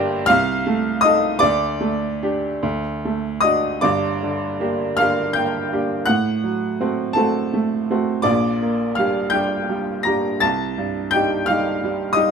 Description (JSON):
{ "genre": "classical, romantic nocturne for solo piano", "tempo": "48-61 BPM (dotted quarters)", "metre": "12/8", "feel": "rubato", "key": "G minor", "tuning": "A4 = 441 Hz", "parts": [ { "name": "bright upright piano", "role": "solo", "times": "0.0-12.3 s", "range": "G1 to Bb6", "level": "-18 LUFS", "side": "right 1 dB", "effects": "none" } ], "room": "light reverb", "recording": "none", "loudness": "-18 LUFS", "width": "side -6 dB against mid", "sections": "0.0-12.3 A section", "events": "none", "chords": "0.3 Adim/C; 1.4 Dsus4; 2.6 D; 3.8 Gm; 6.1 F#dim/A; 8.3 Gm/Bb; 10.4 Cm" }